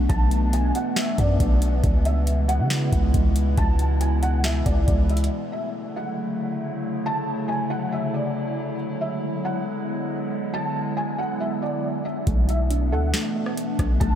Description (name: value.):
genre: hip hop, atmospheric cloud-rap.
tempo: 138 BPM.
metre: 4/4.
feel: half-time.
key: D lydian.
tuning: A4 = 441 Hz.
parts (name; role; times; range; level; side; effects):
felt-muted upright piano; melody; 0.0-14.2 s; D5 to A5; -30 LUFS; equal; ensemble chorus, analog delay.
warbly tape-like pad; sustained chords; 0.0-14.2 s; B2 to E4; -27 LUFS; equal; chorus, built-in reverb, phaser.
long sustained 808-style bass; bass; 0.0-5.3, 12.3-14.2 s; B1 to C#3; -21 LUFS; equal; none.
booming analog drum machine; drums; 0.1-5.3, 12.3-14.2 s; hi-hat, kick drum, rim click, snare drum; -24 LUFS; equal; none.
soft round pluck; arpeggios; 12.3-14.2 s; A3 to A4; -32 LUFS; right 4 dB; chorus, analog delay.
room: moderate huge ambient reverb, RT60 7.8 s.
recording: dreamy mix soaked in reverb.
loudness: -21 LUFS.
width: side -10 dB against mid.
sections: 0.0-5.3 A section; 5.3-14.2 B section.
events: none.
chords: 0.0 Bm7; 1.8 C#m7; 5.3 Dmaj9; 8.8 E9; 12.3 Bm11.